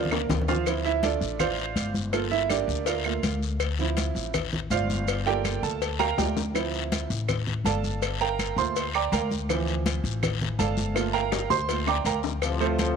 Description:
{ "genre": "latin, salsa", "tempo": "163 BPM", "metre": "4/4", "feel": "straight", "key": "D minor", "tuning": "A4 = 440 Hz", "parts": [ { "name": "clear concert grand piano", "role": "accompaniment", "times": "0.0-12.9 s", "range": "E3 to D6", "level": "-27 LUFS", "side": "right 11 dB", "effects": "none" }, { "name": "upright bass", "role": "bass", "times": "0.0-12.9 s", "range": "G1 to D2", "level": "-30 LUFS", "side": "left 2 dB", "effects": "none" }, { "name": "bongos and cowbell", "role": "percussion", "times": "0.1-13.0 s", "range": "none", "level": "-32 LUFS", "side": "left 15 dB", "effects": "none" }, { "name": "claves", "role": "percussion", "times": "0.1-12.6 s", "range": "none", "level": "-37 LUFS", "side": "right 8 dB", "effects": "none" }, { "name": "congas", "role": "percussion", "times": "0.1-13.0 s", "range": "none", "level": "-32 LUFS", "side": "left 1 dB", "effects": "none" }, { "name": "maracas", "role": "percussion", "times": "0.1-13.0 s", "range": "none", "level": "-41 LUFS", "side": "right 10 dB", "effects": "none" }, { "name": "guiro", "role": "percussion", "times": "0.3-13.0 s", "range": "none", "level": "-37 LUFS", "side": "left 16 dB", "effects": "none" }, { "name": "bright trombone section", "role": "melody", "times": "12.4-13.0 s", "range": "A2 to F3", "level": "-28 LUFS", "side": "left 5 dB", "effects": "none" } ], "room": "light reverb, small room ambience", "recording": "1960s-style stereo with parts hard left and right", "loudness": "-24 LUFS", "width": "side -6 dB against mid", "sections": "0.7-12.4 A section", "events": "drum fill 0.0-0.7, 6.0-6.6, 11.3-12.4; grand piano solo 0.7-12.4", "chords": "0.0 Gm7 (rootless); 0.7 Dm7; 2.1 Gm7; 3.6 Dm7; 5.1 Gm7; 6.6 Dm7; 8.0 Gm7; 9.5 Dm7; 11.0 Gm7; 12.4 Dm7", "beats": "0.29 | 0.66 1.03 1.40 1.76 | 2.13 2.50 2.87 3.24 | 3.61 3.97 4.34 4.71 | 5.08 5.45 5.82 6.18 | 6.55 6.92 7.29 7.66 | 8.02 8.39 8.76 9.13 | 9.49 9.86 10.23 10.59 | 10.96 11.33 11.69 12.06 | 12.43 12.79" }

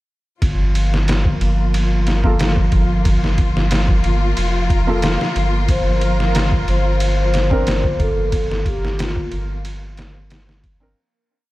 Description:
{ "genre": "trip hop", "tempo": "91 BPM", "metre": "4/4", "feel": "straight", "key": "G minor", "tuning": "A4 = 441 Hz", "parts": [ { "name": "warm symphonic string section", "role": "sustained chords", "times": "0.4-11.0 s", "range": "F3 to F4", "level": "-24 LUFS", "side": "left 1 dB", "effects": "none" }, { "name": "round analog bass", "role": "bass", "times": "0.4-10.9 s", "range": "F1 to G1", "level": "-19 LUFS", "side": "equal", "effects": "none" }, { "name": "trip hop sampler-style drum kit", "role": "drums", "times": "0.4-10.8 s", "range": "kick drum, ride cymbal, snare drum", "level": "-20 LUFS", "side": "equal", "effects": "overdrive, small room ambience" }, { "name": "backwards swelling texture", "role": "texture", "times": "1.0-11.0 s", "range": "Bb3", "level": "-31 LUFS", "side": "right 2 dB", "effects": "built-in reverb" }, { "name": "felt-muted upright piano", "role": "accompaniment", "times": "2.2-11.0 s", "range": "Bb3 to Bb4", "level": "-24 LUFS", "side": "right 1 dB", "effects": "tremolo, low-pass filter, tape echo" }, { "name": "vibraphone with soft mallets", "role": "melody", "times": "5.7-9.3 s", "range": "F4 to C5", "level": "-24 LUFS", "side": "left 2 dB", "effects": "tape echo" } ], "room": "small room ambience", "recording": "none", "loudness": "-15 LUFS", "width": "side -18 dB against mid", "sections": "0.4-11.0 groove", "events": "fade-out 7.4-11.0", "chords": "0.4 Gm7; 5.7 Bbsus2/G", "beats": "| 0.42 1.08 1.74 2.39 | 3.05 3.71 4.37 5.03 | 5.69 6.35 7.01 7.67 | 8.33 8.99 9.65 10.31" }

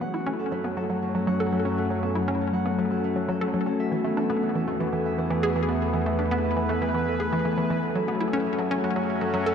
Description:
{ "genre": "ambient, sequencer-driven space music", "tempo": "119 BPM", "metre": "4/4", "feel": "straight", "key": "F# minor", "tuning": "A4 = 440 Hz", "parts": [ { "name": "sweeping resonant pad", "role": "sustained chords", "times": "0.0-9.5 s", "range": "E3 to B4", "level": "-27 LUFS", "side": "left 1 dB", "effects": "chorus, shimmer reverb" }, { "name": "concert harp", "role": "arpeggios", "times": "0.0-9.5 s", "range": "E3 to F#5", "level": "-31 LUFS", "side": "equal", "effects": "auto-pan, ping-pong delay, shimmer reverb" }, { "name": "hollow square pluck", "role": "riff", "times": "0.0-9.5 s", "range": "E3 to A4", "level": "-28 LUFS", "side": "equal", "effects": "chorus, ping-pong delay, shimmer reverb" }, { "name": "analog drone", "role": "bass", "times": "0.6-9.5 s", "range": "E2 to F#2", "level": "-34 LUFS", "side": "equal", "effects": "chorus" }, { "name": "wind-like tuned noise texture", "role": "texture", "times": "0.6-9.5 s", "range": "G#4 to G#5", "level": "-40 LUFS", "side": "equal", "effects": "built-in reverb, shimmer reverb" } ], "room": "wet cathedral reverb, RT60 5.6 s", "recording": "in a vast, echoing space", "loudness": "-23 LUFS", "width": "side -7 dB against mid", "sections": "0.0-9.5 A section", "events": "fade-in on synth texture 0.0-9.5", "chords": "0.0 F#m; 3.8 Esus4; 7.8 F#m", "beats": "0.26 0.77 1.27 | 1.78 2.28 2.79 3.29 | 3.79 4.30 4.80 5.31 | 5.81 6.31 6.82 7.32 | 7.83 8.33 8.84 9.34" }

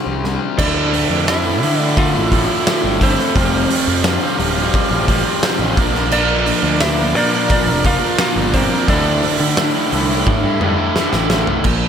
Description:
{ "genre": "quiet-loud alternative rock", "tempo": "87 BPM", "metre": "4/4", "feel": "straight", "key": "D minor", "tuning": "A4 = 445 Hz", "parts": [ { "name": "lightly driven lead guitar", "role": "melody", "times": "0.0-10.9 s", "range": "C4 to F5", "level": "-21 LUFS", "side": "equal", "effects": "slapback echo" }, { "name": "twangy electric guitar", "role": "arpeggios", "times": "0.0-0.6, 11.6-11.9 s", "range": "Bb2 to G3", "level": "-27 LUFS", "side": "right 8 dB", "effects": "phaser" }, { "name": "raw garage guitar", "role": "riff", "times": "0.0-11.9 s", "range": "D2 to Bb4", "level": "-21 LUFS", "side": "left 11 dB", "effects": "overdrive" }, { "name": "fuzz picked electric bass", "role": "bass", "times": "0.1-11.9 s", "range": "D1 to D3", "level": "-21 LUFS", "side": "equal", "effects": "overdrive" }, { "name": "oversized low-tuned drum kit", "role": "drums", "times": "0.2-11.8 s", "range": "crash cymbal, hi-hat, kick drum, snare drum, toms", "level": "-19 LUFS", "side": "equal", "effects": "none" }, { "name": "crunchy overdriven guitar", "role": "riff", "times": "0.6-11.7 s", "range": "D2 to Bb4", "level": "-20 LUFS", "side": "right 11 dB", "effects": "none" } ], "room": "light reverb, small room ambience", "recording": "none", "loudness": "-13 LUFS", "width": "side -8 dB against mid", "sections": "0.6-11.7 A section", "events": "drum fill 10.3-11.7", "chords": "0.0 C; 0.6 Dmadd9; 3.4 Fadd9; 5.8 Bb; 8.9 Dsus2", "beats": "| 0.59 1.28 1.97 2.66 | 3.35 4.04 4.74 5.43 | 6.12 6.81 7.50 8.19 | 8.88 9.58 10.27 10.96 | 11.66" }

